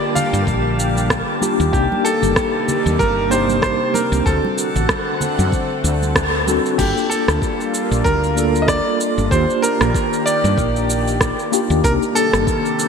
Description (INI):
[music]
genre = sunset chillout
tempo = 95 BPM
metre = 4/4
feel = swing 57% on 16ths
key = G minor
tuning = A4 = 440 Hz
[part]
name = bright concert grand piano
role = melody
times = 0.0-12.9 s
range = G4 to F5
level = -21 LUFS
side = right 1 dB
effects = ping-pong delay
[part]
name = mellow tine electric piano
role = accompaniment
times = 0.0-12.9 s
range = D3 to A4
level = -21 LUFS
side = moving between left 6 dB and right 4 dB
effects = medium stereo tremolo, auto-pan, low-pass filter
[part]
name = lush unison pad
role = sustained chords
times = 0.0-12.9 s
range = C3 to F#5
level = -24 LUFS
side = left 1 dB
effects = chorus, phaser
[part]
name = drifting glass-harmonics texture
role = texture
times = 0.0-6.8 s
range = G4 to A5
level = -30 LUFS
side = equal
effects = chorus, built-in reverb
[part]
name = smooth R&B drum kit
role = drums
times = 0.2-12.9 s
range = crash cymbal, rim click, shaker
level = -23 LUFS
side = right 1 dB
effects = overdrive, gated reverb
[part]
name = congas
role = percussion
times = 0.2-6.6 s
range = none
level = -29 LUFS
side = right 3 dB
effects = none
[part]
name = woody fretless electric bass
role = bass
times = 0.3-12.4 s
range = G1 to G2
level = -20 LUFS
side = equal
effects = none
[part]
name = electronic kick drum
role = drums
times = 0.5-12.6 s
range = none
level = -23 LUFS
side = equal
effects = overdrive
[sound]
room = moderate lush hall reverb, RT60 2.7 s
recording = bright 1980s-style digital production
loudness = -15 LUFS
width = side -6 dB against mid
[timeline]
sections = 0.0-6.8 A section; 6.8-12.9 A section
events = band accent 6.2-6.5; filter sweep on tine electric piano 6.8-12.9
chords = 0.0 Ebmaj7 (rootless); 1.7 Cm7; 4.3 D7; 6.8 Gm7; 9.3 Ebmaj7; 11.8 Cm7